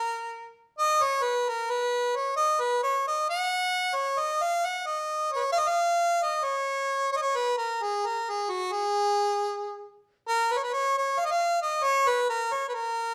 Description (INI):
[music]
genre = balkan folk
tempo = free time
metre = none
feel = none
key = Db mixolydian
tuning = A4 = 435 Hz
[part]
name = warm harmonica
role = solo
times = 0.0-13.1 s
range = Gb4 to Gb5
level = -27 LUFS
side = equal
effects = slapback echo
[sound]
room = light reverb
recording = band playing live in one room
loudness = -27 LUFS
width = mono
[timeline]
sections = 0.0-10.3 A section; 10.3-13.1 B section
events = none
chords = none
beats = free time